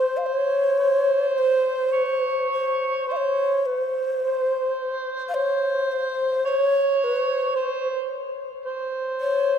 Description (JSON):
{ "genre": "japanese traditional, Japanese chamber music", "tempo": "51-56 BPM", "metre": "4/4", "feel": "rubato", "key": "unclear", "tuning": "A4 = 439 Hz", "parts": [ { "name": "breathy mellow shakuhachi", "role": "melody", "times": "0.0-9.6 s", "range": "C5 to F5", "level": "-22 LUFS", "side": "left 1 dB", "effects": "none" }, { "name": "overdriven harmonica", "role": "second line", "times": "0.0-9.6 s", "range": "C5 to Db5", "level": "-26 LUFS", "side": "right 3 dB", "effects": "none" } ], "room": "moderate cathedral reverb, RT60 6.7 s", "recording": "minimal, uncompressed stereo recording", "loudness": "-21 LUFS", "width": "side -8 dB against mid", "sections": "0.0-9.6 A section", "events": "none", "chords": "none" }